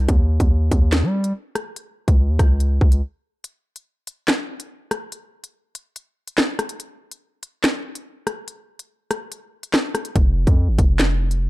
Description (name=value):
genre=hip hop, drill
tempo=143 BPM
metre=4/4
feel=half-time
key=unclear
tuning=A4 = 440 Hz
part: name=hard-hitting 808-style bass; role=bass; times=0.0-3.0, 10.2-11.5 s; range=F1 to G3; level=-18 LUFS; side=equal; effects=none
part: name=drill drum kit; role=drums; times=0.1-11.4 s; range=handclaps, hi-hat, kick drum, rim click, snare drum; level=-19 LUFS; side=equal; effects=none
room=little or no reverb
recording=dark, warm production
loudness=-18 LUFS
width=side -18 dB against mid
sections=0.0-11.5 A section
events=break 3.0-3.4, 3.4-10.2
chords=none